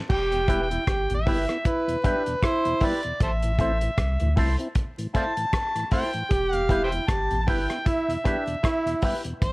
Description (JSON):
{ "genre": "roots reggae", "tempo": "77 BPM", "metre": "4/4", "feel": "swing 57% on 16ths", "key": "unclear", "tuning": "A4 = 441 Hz", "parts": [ { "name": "mellow tonewheel organ", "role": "accompaniment", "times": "0.0-9.3 s", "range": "E2 to E4", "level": "-33 LUFS", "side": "left 1 dB", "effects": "overdrive, chorus vibrato, slow rotary speaker" }, { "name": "overdriven harmonica", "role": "melody", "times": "0.1-9.5 s", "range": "A4 to A5", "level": "-28 LUFS", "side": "equal", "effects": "none" }, { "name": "clear trombone", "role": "second line", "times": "0.1-9.2 s", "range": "D4 to G4", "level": "-27 LUFS", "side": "right 2 dB", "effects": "none" }, { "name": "warm sub bass", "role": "bass", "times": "0.1-9.5 s", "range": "E1 to D2", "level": "-27 LUFS", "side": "equal", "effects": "none" }, { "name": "cloth-damped thuddy drum kit", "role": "drums", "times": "0.1-9.5 s", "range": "crash cymbal, hi-hat, kick drum, rim click", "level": "-26 LUFS", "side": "equal", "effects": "none" }, { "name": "electric guitar with an envelope filter", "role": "accompaniment", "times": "0.5-9.2 s", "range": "E4 to C5", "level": "-34 LUFS", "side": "right 2 dB", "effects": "phaser" }, { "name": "warm upright piano", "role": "stabs", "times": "0.5-9.2 s", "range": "E4 to E5", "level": "-33 LUFS", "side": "left 2 dB", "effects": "none" } ], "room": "studio reverb", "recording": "vinyl crackle", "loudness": "-22 LUFS", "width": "side -22 dB against mid", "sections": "0.1-9.5 A section", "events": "none", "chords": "0.1 Em; 3.2 Am; 6.3 Em", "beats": "| 0.10 0.87 1.65 2.43 | 3.20 3.98 4.76 5.53 | 6.31 7.09 7.86 8.64 | 9.42" }